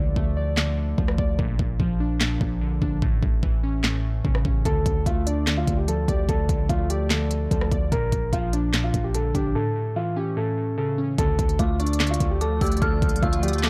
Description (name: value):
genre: hip hop, trap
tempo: 147 BPM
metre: 4/4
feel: half-time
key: D harmonic minor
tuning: A4 = 439 Hz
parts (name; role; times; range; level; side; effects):
- glassy digital keys; accompaniment; 0.0-13.7 s; A2 to D5; -29 LUFS; equal; chorus, low-pass filter
- long sustained 808-style bass; bass; 0.0-13.7 s; A1 to D2; -28 LUFS; equal; none
- trap drum kit; drums; 0.2-13.7 s; handclaps, hi-hat, kick drum, rim click, snare drum; -27 LUFS; equal; overdrive
- dark baby grand piano; melody; 4.7-13.7 s; D4 to Bb4; -30 LUFS; equal; low-pass filter
- granular cloud pad; sustained chords; 12.4-13.7 s; D3 to F4; -38 LUFS; equal; none
- dark detuned synth bell; second line; 11.6-13.7 s; C#6 to F6; -35 LUFS; equal; chorus, phaser
room: little or no reverb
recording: dry, gritty hardware recording, transformer saturation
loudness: -23 LUFS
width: mono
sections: 0.0-11.2 A section; 11.2-13.7 B section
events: break 0.0-4.7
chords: 0.0 Dm; 1.4 Bb; 3.0 A; 4.7 Dm; 7.9 Bb; 9.6 A; 11.2 Dm